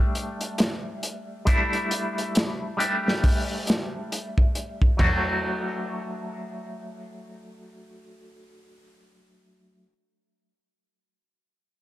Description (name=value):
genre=trip hop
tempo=68 BPM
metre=4/4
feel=swing 60% on 16ths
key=unclear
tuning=A4 = 442 Hz
part: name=electric guitar with an envelope filter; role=accompaniment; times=0.0-9.9 s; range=F#3 to G4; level=-28 LUFS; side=equal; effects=tremolo, tape echo
part: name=crunchy breakbeat drum kit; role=drums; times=0.2-5.2 s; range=china cymbal, hi-hat, kick drum, snare drum, toms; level=-23 LUFS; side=equal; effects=none
room=small room ambience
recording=none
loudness=-23 LUFS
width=side -15 dB against mid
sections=0.0-5.0 A section; 5.0-8.5 B section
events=none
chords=0.0 A7sus4; 5.0 D